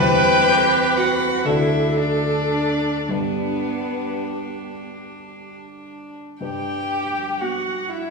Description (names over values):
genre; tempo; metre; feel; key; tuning
classical, slow romantic movement for piano quintet; 34-42 BPM (dotted quarters); 6/8; rubato; G major; A4 = 441 Hz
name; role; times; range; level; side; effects
dark violin; melody; 0.0-8.1 s; B4 to G5; -25 LUFS; left 8 dB; none
dark cello; second line; 0.0-8.1 s; B3 to G4; -25 LUFS; right 3 dB; none
warm violin; second line; 0.0-8.1 s; C4 to G5; -30 LUFS; right 1 dB; none
dark concert grand piano; accompaniment; 0.0-8.1 s; D2 to D5; -26 LUFS; left 1 dB; none
dark viola; accompaniment; 0.0-7.8 s; B3 to B4; -22 LUFS; right 2 dB; none
room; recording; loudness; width
wet recital hall reverb, RT60 1.7 s; recorded in a church or concert hall, studio reverb; -18 LUFS; side -3 dB against mid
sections
0.0-6.4 A section; 6.4-8.1 B section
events
none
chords
0.0 C/E; 1.5 D; 3.1 G